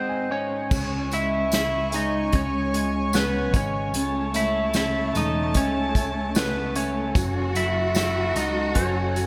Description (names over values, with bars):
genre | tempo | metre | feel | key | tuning
pop ballad | 75 BPM | 4/4 | straight | C# minor | A4 = 436 Hz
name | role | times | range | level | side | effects
lightly driven lead guitar | melody | 0.0-9.3 s | B3 to E5 | -28 LUFS | equal | slapback echo
warm concert grand piano | accompaniment | 0.0-9.3 s | G#2 to G#5 | -33 LUFS | equal | none
warm studio string section | sustained chords | 0.0-9.3 s | G#2 to C#6 | -36 LUFS | equal | none
warm studio cello section | second line | 0.7-9.3 s | A3 to F#4 | -35 LUFS | equal | none
fretless electric bass | bass | 0.7-9.3 s | E1 to C#2 | -31 LUFS | equal | ensemble chorus
unplugged drum kit | drums | 0.7-9.3 s | crash cymbal, hi-hat, kick drum, snare drum | -28 LUFS | equal | none
tambourine | percussion | 0.7-9.3 s | none | -40 LUFS | equal | none
room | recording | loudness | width
moderate lush hall reverb, RT60 2.8 s | big arena sound | -24 LUFS | mono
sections
0.7-9.3 A section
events
grand piano fill 0.0-0.7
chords
0.0 G#; 0.7 C#m; 3.9 A; 7.1 F#m7